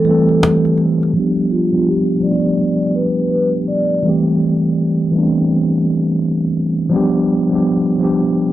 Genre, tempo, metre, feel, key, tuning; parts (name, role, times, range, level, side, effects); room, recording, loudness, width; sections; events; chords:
lo-fi hip hop; 83 BPM; 4/4; swing 65% on 16ths; A4 = 440 Hz
vibraphone with soft mallets; melody; 0.0-4.0 s; F4 to D5; -20 LUFS; left 1 dB; low-pass filter, tape echo
mellow tine electric piano; accompaniment; 0.0-8.5 s; E3 to A4; -14 LUFS; equal; medium stereo tremolo, cassette tape, low-pass filter
cajon; drums; 0.0-1.1 s; -20 LUFS; equal
moderate small room reverb, RT60 0.5 s; dark, warm production; -13 LUFS; side -13 dB against mid
0.0-1.1 A section; 1.1-8.5 B section
break 0.0-1.1; filter sweep 1.1-8.5
0.0 Am7; 1.1 G7; 4.0 Am7; 6.9 G7